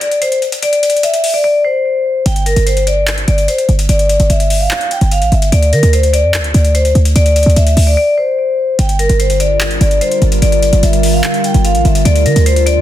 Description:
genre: hip hop, trap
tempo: 147 BPM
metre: 4/4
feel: half-time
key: unclear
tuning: A4 = 440 Hz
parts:
  - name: vibraphone with medium hard mallets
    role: melody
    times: 0.0-12.8 s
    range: Bb4 to G5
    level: -14 LUFS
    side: left 1 dB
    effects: low-pass filter
  - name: trap drum kit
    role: drums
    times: 0.0-12.8 s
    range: handclaps, hi-hat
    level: -19 LUFS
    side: left 2 dB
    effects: none
  - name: short 808-style bass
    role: bass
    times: 2.3-12.8 s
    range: G1 to D3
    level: -11 LUFS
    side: equal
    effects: none
  - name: glassy FM pad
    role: sustained chords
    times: 9.0-12.8 s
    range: D3 to C5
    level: -18 LUFS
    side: left 1 dB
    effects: ensemble chorus, built-in reverb
room: digital ambience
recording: dense, heavily limited modern master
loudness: -10 LUFS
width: side -12 dB against mid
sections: 0.0-12.8 A section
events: break 0.0-2.3, 8.0-8.8; drums muted 1.4-2.3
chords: 0.0 N.C.; 2.3 G5; 5.5 D7(no3); 8.8 Gm7; 12.1 Dm7

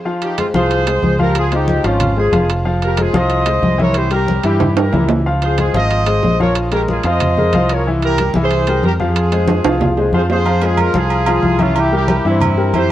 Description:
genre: latin, salsa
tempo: 184 BPM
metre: 4/4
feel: straight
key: F minor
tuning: A4 = 440 Hz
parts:
  - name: bright baby grand piano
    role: accompaniment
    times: 0.1-12.9 s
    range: E3 to F5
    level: -19 LUFS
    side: left 2 dB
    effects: none
  - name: congas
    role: percussion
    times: 0.1-12.9 s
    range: none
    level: -21 LUFS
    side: left 1 dB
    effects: none
  - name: warm horn section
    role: melody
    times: 0.2-12.9 s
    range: C4 to Eb5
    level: -18 LUFS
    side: equal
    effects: none
  - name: timbales and agogo bells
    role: percussion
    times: 0.2-12.9 s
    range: none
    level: -21 LUFS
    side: right 6 dB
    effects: none
  - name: fingered electric bass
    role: bass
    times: 0.5-12.9 s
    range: F1 to G2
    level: -18 LUFS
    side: equal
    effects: none
room: light reverb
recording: worn, warbling old tape, cassette tape, warbly pitch drift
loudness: -12 LUFS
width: side -13 dB against mid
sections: 0.1-10.5 A section; 10.5-12.9 B section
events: drum fill 4.6-5.3, 9.5-10.5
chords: 0.1 Fm; 1.4 Dbmaj7; 2.7 Fm7; 4.0 C7; 5.3 Dbmaj7; 6.6 Bb5; 7.9 C7; 9.2 Fm; 11.8 C7

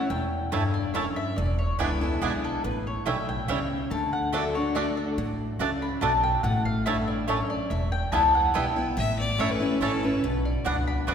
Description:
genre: bluegrass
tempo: 142 BPM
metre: 3/4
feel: straight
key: unclear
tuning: A4 = 440 Hz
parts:
  - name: mandolin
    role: melody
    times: 0.0-11.1 s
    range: G#4 to D6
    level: -29 LUFS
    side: left 2 dB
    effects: none
  - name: picked steel-string acoustic guitar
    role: accompaniment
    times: 0.0-11.1 s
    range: E2 to F#4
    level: -29 LUFS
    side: left 2 dB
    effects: none
  - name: upright bass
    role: bass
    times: 0.1-11.1 s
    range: E1 to D2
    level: -30 LUFS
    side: equal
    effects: none
  - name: bluegrass banjo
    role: melody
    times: 0.5-11.1 s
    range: G3 to E4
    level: -34 LUFS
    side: right 4 dB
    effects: none
  - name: mandolin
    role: stabs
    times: 0.5-11.1 s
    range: A3 to A5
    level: -33 LUFS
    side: right 5 dB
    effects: none
  - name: clear fiddle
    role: second line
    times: 9.0-10.4 s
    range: A4 to E5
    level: -31 LUFS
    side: left 3 dB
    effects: none
room: wet concert hall reverb, RT60 2.5 s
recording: recorded in a church or concert hall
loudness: -24 LUFS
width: side -7 dB against mid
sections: 0.0-11.1 A section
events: none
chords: 0.0 A; 1.4 E7; 2.6 A7; 3.9 D; 6.4 A; 7.7 Em; 9.0 A; 10.2 Bm

